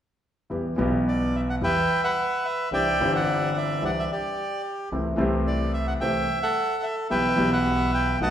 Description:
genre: tango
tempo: 109 BPM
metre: 4/4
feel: rubato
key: E minor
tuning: A4 = 443 Hz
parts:
  - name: warm concert grand piano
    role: accompaniment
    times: 0.5-8.3 s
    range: G1 to G4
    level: -25 LUFS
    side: left 1 dB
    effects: none
  - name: upright bass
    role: bass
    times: 0.5-8.3 s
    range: G1 to E2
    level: -32 LUFS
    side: equal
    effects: none
  - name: bandoneon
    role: melody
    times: 1.1-8.3 s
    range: G4 to A5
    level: -24 LUFS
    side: right 1 dB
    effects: none
room: wet recital hall reverb, RT60 1.3 s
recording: recorded in a church or concert hall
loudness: -22 LUFS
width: side -10 dB against mid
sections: 0.5-8.3 A section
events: none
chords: 0.5 Em; 2.7 Cadd9; 4.9 Am7/C; 7.1 Em/B

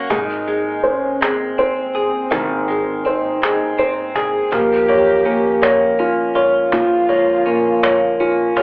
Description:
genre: six-eight pop ballad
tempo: 54 BPM (dotted quarters)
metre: 6/8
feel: straight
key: Ab major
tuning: A4 = 440 Hz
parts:
  - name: felt-muted upright piano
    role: accompaniment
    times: 0.0-8.6 s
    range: Eb3 to Db5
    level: -16 LUFS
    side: equal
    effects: plate reverb, slapback echo
  - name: direct-recorded clean electric guitar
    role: arpeggios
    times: 0.0-8.6 s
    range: Eb3 to Ab4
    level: -23 LUFS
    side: equal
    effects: wide subtle chorus, plate reverb, slapback echo
  - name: upright bass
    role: bass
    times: 0.0-8.6 s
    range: Ab1 to Bb1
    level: -32 LUFS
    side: equal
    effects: none
  - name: mellow French horn section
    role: second line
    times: 0.1-8.6 s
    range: C4 to Ab4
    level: -21 LUFS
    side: equal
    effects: plate reverb, slapback echo
  - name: cajon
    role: drums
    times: 0.1-8.6 s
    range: none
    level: -20 LUFS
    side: equal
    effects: slapback echo
room: moderate club reverb, RT60 0.8 s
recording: live gig heard through the venue's PA, club reverb, telephone sound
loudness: -14 LUFS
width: side -28 dB against mid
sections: 0.1-8.6 A section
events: none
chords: 0.1 Ab; 4.5 Bbm

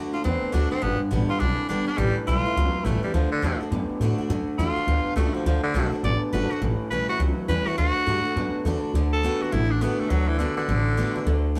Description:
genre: rockabilly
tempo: 207 BPM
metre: 4/4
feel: swing 62% on 8ths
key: D major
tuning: A4 = 441 Hz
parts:
  - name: picked steel-string acoustic guitar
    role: accompaniment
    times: 0.0-11.6 s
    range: E2 to G4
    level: -34 LUFS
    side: equal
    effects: none
  - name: electric guitar through a small old amp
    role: riff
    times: 0.0-11.6 s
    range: G2 to B3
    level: -31 LUFS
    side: equal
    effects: spring reverb
  - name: upright bass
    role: bass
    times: 0.0-11.6 s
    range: G1 to A2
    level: -27 LUFS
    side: equal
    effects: none
  - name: raspy tenor saxophone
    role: melody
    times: 0.1-11.4 s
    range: D3 to D5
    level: -29 LUFS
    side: equal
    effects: none
room: moderate stone room reverb, RT60 1.1 s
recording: band playing live in one room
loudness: -24 LUFS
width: mono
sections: 0.0-8.9 A section; 8.9-11.6 B section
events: none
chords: 0.0 D; 0.8 G; 2.0 A7; 3.1 D; 6.6 A7; 7.8 D

